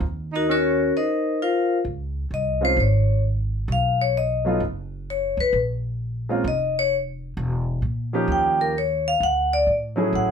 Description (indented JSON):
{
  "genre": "jazz",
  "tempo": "130 BPM",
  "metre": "4/4",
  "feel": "swing 67% on 8ths",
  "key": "Db major",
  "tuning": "A4 = 440 Hz",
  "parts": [
    { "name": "warm baby grand piano", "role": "accompaniment", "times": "0.0-10.3 s", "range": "F3 to G#4", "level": "-23 LUFS", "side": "right 1 dB", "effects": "none" },
    { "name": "upright bass", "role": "bass", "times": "0.0-10.3 s", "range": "E1 to Bb2", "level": "-25 LUFS", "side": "right 1 dB", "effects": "none" },
    { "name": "mellow alto saxophone", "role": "second line", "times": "0.3-0.9 s", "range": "Db4 to Eb4", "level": "-28 LUFS", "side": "right 8 dB", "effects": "none" },
    { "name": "vibraphone with medium hard mallets", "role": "melody", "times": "0.4-10.3 s", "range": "Db4 to G5", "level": "-21 LUFS", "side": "left 2 dB", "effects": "none" }
  ],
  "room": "moderate studio ambience, RT60 0.5 s",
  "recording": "band playing live in one room",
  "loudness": "-20 LUFS",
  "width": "side -7 dB against mid",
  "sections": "0.0-1.9 A section; 1.9-10.3 B section",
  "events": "none",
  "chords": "0.0 Ebm7; 0.9 Bbsus24/Eb; 1.9 Dbmaj7(no3); 3.7 Cb(#11); 5.5 Bb5; 7.4 Em; 8.3 Eb9; 9.2 Dmaj9#11"
}